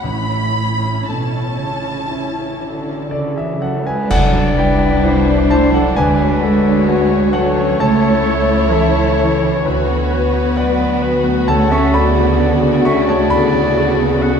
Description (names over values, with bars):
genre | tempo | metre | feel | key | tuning
cinematic, emotional film score for orchestra | 55-67 BPM | 4/4 | rubato | A major | A4 = 439 Hz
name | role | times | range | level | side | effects
warm symphonic violin section | melody | 0.0-14.4 s | E4 to B5 | -27 LUFS | left 3 dB | none
warm studio violin section | second line | 0.0-14.4 s | D4 to B5 | -24 LUFS | left 1 dB | none
clear grand piano | accompaniment | 0.0-14.4 s | A1 to C#6 | -19 LUFS | left 2 dB | none
warm symphonic viola section | accompaniment | 0.0-14.4 s | C#3 to C#5 | -24 LUFS | equal | none
dark symphonic cello section | bass | 0.0-14.4 s | A2 to C#4 | -20 LUFS | right 3 dB | none
cymbal swell, clash cymbals and concert bass drum | percussion | 0.0-5.9 s | none | -23 LUFS | equal | none
concert flute | second line | 3.1-14.4 s | G#4 to E5 | -24 LUFS | left 2 dB | none
warm clarinet | second line | 4.1-14.4 s | A4 to F#5 | -23 LUFS | left 3 dB | none
mellow French horn section | sustained chords | 4.1-14.4 s | C#3 to C#5 | -21 LUFS | left 4 dB | none
warm symphonic double bass section | bass | 4.1-14.4 s | C2 to D2 | -20 LUFS | right 3 dB | none
room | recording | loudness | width
wet concert hall reverb, RT60 2.2 s | dark, warm production | -13 LUFS | side -6 dB against mid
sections
0.0-4.1 A section; 4.1-14.4 A section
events
band accent 4.1-5.0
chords
0.0 A; 4.1 Cadd9; 6.0 Dmaj7; 7.8 A/C#; 9.6 Bm/D; 11.5 Dmaj7